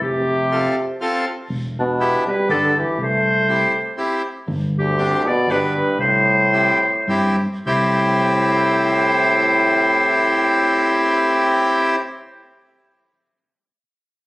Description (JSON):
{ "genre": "alpine folk, alpine dance band", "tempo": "101-122 BPM", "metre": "3/4", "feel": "swing 54% on 8ths", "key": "C major", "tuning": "A4 = 441 Hz", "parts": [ { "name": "clear clarinet", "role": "melody", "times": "0.0-12.0 s", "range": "D4 to D5", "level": "-19 LUFS", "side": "equal", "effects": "none" }, { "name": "fretless electric bass", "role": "bass", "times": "0.0-12.3 s", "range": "E1 to G2", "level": "-24 LUFS", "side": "equal", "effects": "wide subtle chorus" }, { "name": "clear euphonium", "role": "second line", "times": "0.1-12.0 s", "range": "D2 to A3", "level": "-23 LUFS", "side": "equal", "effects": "slapback echo" }, { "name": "accordion", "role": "accompaniment", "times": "0.5-12.0 s", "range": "B3 to A4", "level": "-18 LUFS", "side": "equal", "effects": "none" } ], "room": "moderate echo chamber reverb, RT60 1.6 s, studio reverb", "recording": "recorded on a phone in the room, compression", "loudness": "-15 LUFS", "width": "side -21 dB against mid", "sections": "0.0-4.5 A section; 4.5-7.7 B section; 7.7-11.2 C section", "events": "slowing down 4.5-7.7", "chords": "0.0 F; 1.5 Em; 2.5 G; 3.0 C6; 4.5 Gsus4; 5.5 G; 6.0 C6" }